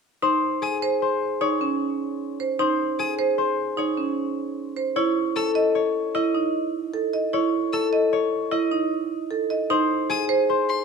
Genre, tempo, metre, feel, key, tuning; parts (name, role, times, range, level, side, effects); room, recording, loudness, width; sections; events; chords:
classical, minimalist pattern music; 152 BPM; 6/4; straight; A4 = 443 Hz
concert harp; melody; 0.2-10.8 s; Ab4 to Eb5; -25 LUFS; left 8 dB
marimba with hard mallets; arpeggios; 0.2-10.5 s; Db4 to Eb5; -24 LUFS; right 6 dB
rich violin; arpeggios; 0.6-10.8 s; C6 to E6; -30 LUFS; left 4 dB
moderate large studio reverb, RT60 1.4 s; minimal, uncompressed stereo recording; -21 LUFS; side -5 dB against mid
0.2-10.8 A section
0.2 Db5; 5.0 A; 9.7 Dbmaj7(no3)